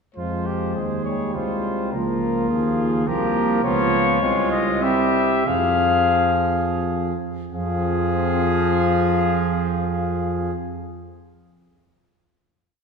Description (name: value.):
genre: classical, brass quintet.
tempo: 84-106 BPM.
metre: 3/4.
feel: rubato.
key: F minor.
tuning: A4 = 440 Hz.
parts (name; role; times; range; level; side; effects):
mellow trumpet; melody; 0.1-10.5 s; Ab4 to F5; -24 LUFS; left 6 dB; none.
clear trumpet; second line; 0.2-10.5 s; F4 to Ab4; -28 LUFS; right 6 dB; none.
brilliant trombone; accompaniment; 0.2-10.5 s; F3 to Ab3; -28 LUFS; right 1 dB; none.
warm French horn; accompaniment; 0.2-10.5 s; Ab3 to C4; -27 LUFS; left 2 dB; none.
mellow tuba; bass; 0.2-10.5 s; C2 to F2; -24 LUFS; right 2 dB; none.
room: wet scoring stage reverb, RT60 2.0 s.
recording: heard from further back in the room.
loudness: -19 LUFS.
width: side -5 dB against mid.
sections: 0.2-7.5 A section; 7.5-11.7 final chord.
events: slowing down 2.8-7.5.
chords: 0.2 Fm; 1.9 Bbm/Db; 3.6 Db7; 4.2 Fm/C; 4.8 C; 5.5 Fm.